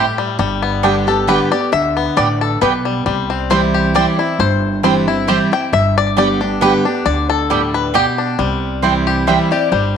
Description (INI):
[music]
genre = bluegrass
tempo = 135 BPM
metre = 3/4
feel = swing 53% on 8ths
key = G major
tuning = A4 = 440 Hz
[part]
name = bluegrass banjo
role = melody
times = 0.0-10.0 s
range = G3 to G5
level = -17 LUFS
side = left 8 dB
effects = slapback echo
[part]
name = picked steel-string acoustic guitar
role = accompaniment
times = 0.0-10.0 s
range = G2 to G4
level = -18 LUFS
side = right 2 dB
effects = none
[part]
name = mandolin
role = stabs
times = 0.0-9.4 s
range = B3 to G5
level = -20 LUFS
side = right 11 dB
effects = none
[part]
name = upright bass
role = bass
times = 0.0-10.0 s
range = G1 to D2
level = -23 LUFS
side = right 1 dB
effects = none
[part]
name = lap resonator guitar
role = melody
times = 9.3-10.0 s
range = C5 to E5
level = -18 LUFS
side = left 10 dB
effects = slapback echo
[sound]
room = light reverb, small room ambience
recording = 1960s-style stereo with parts hard left and right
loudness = -13 LUFS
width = side -7 dB against mid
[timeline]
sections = 0.0-8.4 A section; 8.4-10.0 B section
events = five-string banjo solo 0.0-8.4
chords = 0.4 G; 3.1 C; 5.7 G; 8.4 C